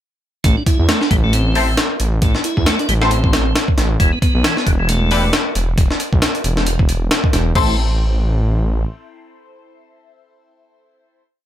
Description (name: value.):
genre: breakbeat, breaks.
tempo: 135 BPM.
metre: 4/4.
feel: swing 58% on 16ths.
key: A minor pentatonic.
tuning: A4 = 440 Hz.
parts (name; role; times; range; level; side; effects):
tonewheel organ; riff; 0.4-7.8 s; D3 to E4; -21 LUFS; right 1 dB; slow rotary speaker, overdrive, ping-pong delay.
detuned saw bass; bass; 0.4-8.8 s; E1 to E2; -17 LUFS; equal; none.
breakbeat sampler-style drum kit; drums; 0.4-7.7 s; crash cymbal, hi-hat, kick drum, snare drum; -16 LUFS; equal; none.
band-passed chord stab; stabs; 1.6-11.2 s; C4 to C5; -22 LUFS; left 4 dB; phaser, lush chorus, ping-pong delay.
room: little or no reverb.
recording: none.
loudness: -14 LUFS.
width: side -11 dB against mid.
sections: 0.4-7.6 drop; 7.6-11.1 final chord.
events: drop 0.4-7.6.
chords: 0.4 Am; 4.0 E5; 7.6 Am.